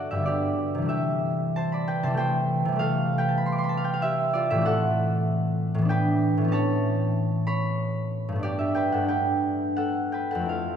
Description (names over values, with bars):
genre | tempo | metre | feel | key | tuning
classical, solo harp piece | 82-100 BPM | 3/4 | rubato | unclear | A4 = 442 Hz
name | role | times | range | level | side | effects
concert harp | solo | 0.0-10.8 s | F2 to D6 | -23 LUFS | equal | none
room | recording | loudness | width
wet church reverb, RT60 2.7 s | minimal, uncompressed stereo recording | -23 LUFS | side -8 dB against mid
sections
0.0-10.8 A section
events
none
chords
0.0 Cmaj9/G; 0.9 C6; 2.8 Fmaj9/C; 4.7 Am6; 5.9 Em7/A; 6.5 B9sus4/A; 8.4 Gadd9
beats
0.24 | 0.88 1.54 2.18 | 2.80 3.40 4.03 | 4.65 5.27 5.90 | 6.52 7.15 7.79 | 8.44 9.09 9.77 | 10.49